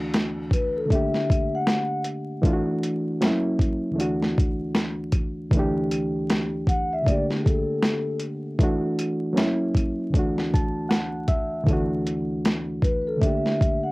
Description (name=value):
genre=lo-fi hip hop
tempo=78 BPM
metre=4/4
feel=swing 63% on 16ths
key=D major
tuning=A4 = 437 Hz
part: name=barky reed electric piano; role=accompaniment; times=0.0-13.9 s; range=D2 to A5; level=-25 LUFS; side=equal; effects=overdrive, low-pass filter, cassette tape
part: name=boom bap sampler-style drum kit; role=drums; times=0.1-13.8 s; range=hi-hat, kick drum, snare drum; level=-23 LUFS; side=equal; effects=overdrive, cassette tape
part: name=vibraphone with soft mallets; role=melody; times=0.5-2.0, 6.7-8.2, 12.8-13.9 s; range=G#4 to F#5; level=-27 LUFS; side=left 1 dB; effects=low-pass filter, cassette tape
room=little or no reverb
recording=home recording on cassette, vinyl crackle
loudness=-22 LUFS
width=side -22 dB against mid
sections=0.0-13.9 A section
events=none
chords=0.0 Asus4/D; 0.9 Gmadd9/D; 2.4 Dadd9; 3.2 F#7; 4.0 Dadd9; 5.5 A7sus4/D; 7.1 Gmadd9/D; 8.6 Dadd9; 9.4 F#7; 10.1 Dadd9; 13.2 Gmadd9/D